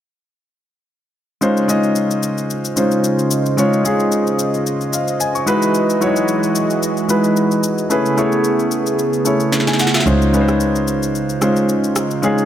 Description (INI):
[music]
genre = amapiano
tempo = 111 BPM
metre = 4/4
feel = swing 55% on 16ths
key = Db major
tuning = A4 = 440 Hz
[part]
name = warm grand piano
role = accompaniment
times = 1.4-12.5 s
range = F#3 to Db6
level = -16 LUFS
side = left 1 dB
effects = none
[part]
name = warm analog pad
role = sustained chords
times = 1.4-12.5 s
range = Db3 to Eb5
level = -20 LUFS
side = right 4 dB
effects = chorus
[part]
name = electronic shaker, snare drum and rim click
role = drums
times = 1.4-12.5 s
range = none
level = -23 LUFS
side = left 2 dB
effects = none
[part]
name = dark double bass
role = bass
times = 10.1-12.5 s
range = Db2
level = -20 LUFS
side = right 1 dB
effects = none
[sound]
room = light reverb, studio ambience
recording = none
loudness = -14 LUFS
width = side -10 dB against mid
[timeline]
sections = 1.4-12.5 A section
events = drum fill 9.5-10.1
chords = 1.4 Dbmaj9; 5.5 Emaj9; 7.9 Amaj9; 10.1 Dbmaj9